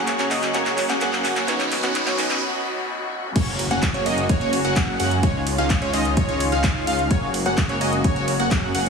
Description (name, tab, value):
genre	EDM, festival progressive house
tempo	128 BPM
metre	4/4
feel	straight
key	F# major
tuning	A4 = 440 Hz
part	picked swing-style acoustic guitar	accompaniment	0.0-2.4 s	D#3 to G#4	-30 LUFS	right 4 dB	sidechain pumping, tape echo
part	dark studio string section	sustained chords	0.0-8.9 s	C#3 to C#6	-30 LUFS	left 2 dB	sidechain pumping
part	plucky unison lead	arpeggios	0.0-8.9 s	C#5 to F#5	-27 LUFS	right 1 dB	sidechain pumping, tape echo
part	supersaw stab	riff	0.0-8.9 s	G#3 to F#5	-24 LUFS	equal	sidechain pumping, tape echo
part	wide detuned saw bass	bass	0.0-8.9 s	F#1 to F#2	-28 LUFS	equal	chorus, sidechain pumping
part	riser, noise sweep and impact	sound effects	0.0-5.2 s	none	-30 LUFS	equal	none
part	house drum kit	drums	0.1-8.9 s	crash cymbal, handclaps, hi-hat, ride cymbal	-27 LUFS	equal	none
part	electronic kick drum	drums	3.4-8.6 s	none	-22 LUFS	equal	none
room	moderate lush hall reverb, RT60 1.9 s, digital ambience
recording	heavily compressed radio sound, high-pass filter, small room ambience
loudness	-19 LUFS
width	side -5 dB against mid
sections	0.0-3.4 A section; 3.4-8.9 B section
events	build-up 0.0-3.4; drum fill 0.0-2.4; riser 0.0-2.4; noise sweep 1.5-3.4; break 2.4-3.4; drop 3.4-8.9; impact 3.4-5.2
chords	0.0 F#add9; 1.5 Badd9; 3.4 F#add9; 5.2 C#add9; 7.1 F#add9